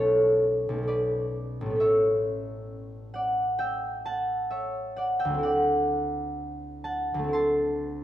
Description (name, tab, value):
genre	classical, solo harp piece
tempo	65 BPM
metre	4/4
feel	rubato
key	unclear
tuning	A4 = 439 Hz
part	concert harp	solo	0.0-8.0 s	A1 to C6	-24 LUFS	equal	none
room	wet recital hall reverb, RT60 1.5 s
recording	dark, warm production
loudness	-24 LUFS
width	side -12 dB against mid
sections	0.0-8.0 A section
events	none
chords	0.0 Bm9; 1.8 A9; 5.4 D9